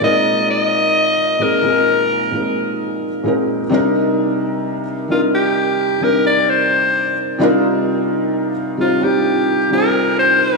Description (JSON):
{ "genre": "R&B", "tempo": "65 BPM", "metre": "4/4", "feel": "straight", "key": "C minor", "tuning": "A4 = 444 Hz", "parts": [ { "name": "raspy alto saxophone", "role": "melody", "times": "0.0-10.6 s", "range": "F4 to Eb5", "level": "-16 LUFS", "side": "left 1 dB", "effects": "diffuse ambient delay" }, { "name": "felt-muted upright piano", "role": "accompaniment", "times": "0.0-10.6 s", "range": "Bb2 to C5", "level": "-17 LUFS", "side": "equal", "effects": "analog chorus" } ], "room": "wet plate reverb, RT60 3.4 s", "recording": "dreamy mix soaked in reverb, studio reverb", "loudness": "-14 LUFS", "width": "side -2 dB against mid", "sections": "0.0-10.6 A section", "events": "none", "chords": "0.0 Bb9sus4; 3.7 Cm9; 7.4 Cm11", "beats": "| 0.02 0.95 1.87 2.79 | 3.71 4.64 5.56 6.48 | 7.41 8.33 9.25 10.18" }